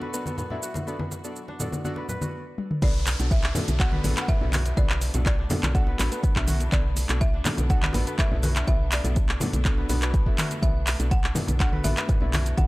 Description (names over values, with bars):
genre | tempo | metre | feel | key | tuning
afro house | 123 BPM | 4/4 | straight | B minor | A4 = 440 Hz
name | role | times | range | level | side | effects
bright studio string section | sustained chords | 0.0-12.7 s | B2 to F#4 | -41 LUFS | equal | sidechain pumping
kora | arpeggios | 0.0-12.7 s | B3 to B4 | -37 LUFS | left 1 dB | sidechain pumping, tape echo
warm analog keys | stabs | 0.0-12.7 s | B3 to D5 | -35 LUFS | left 1 dB | chorus, sidechain pumping, tape echo
congas | percussion | 0.0-12.6 s | none | -31 LUFS | left 1 dB | none
afro-pop drum kit | drums | 0.1-12.7 s | crash cymbal, handclaps, hi-hat, shaker, toms | -29 LUFS | equal | none
folk marimba with hard mallets | melody | 2.8-12.7 s | D5 to F#5 | -36 LUFS | left 1 dB | tape echo
woody FM bass | bass | 2.8-12.7 s | F#1 to B1 | -26 LUFS | equal | sidechain pumping
electronic kick drum | drums | 2.8-12.7 s | none | -23 LUFS | equal | none
downlifter | sound effects | 2.8-6.7 s | none | -40 LUFS | equal | none
room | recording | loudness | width
small room ambience | dry, gritty hardware recording | -22 LUFS | side -20 dB against mid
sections
0.0-2.8 A section; 2.8-12.7 B section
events
filter sweep on string section 0.0-2.8; drum fill 2.6; drop 2.8-12.7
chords
0.0 Bm7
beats
0.38 | 0.87 1.36 1.85 2.33 | 2.82 3.31 3.80 4.29 | 4.77 5.26 5.75 6.24 | 6.72 7.21 7.70 8.19 | 8.68 9.16 9.65 10.14 | 10.63 11.12 11.60 12.09 | 12.58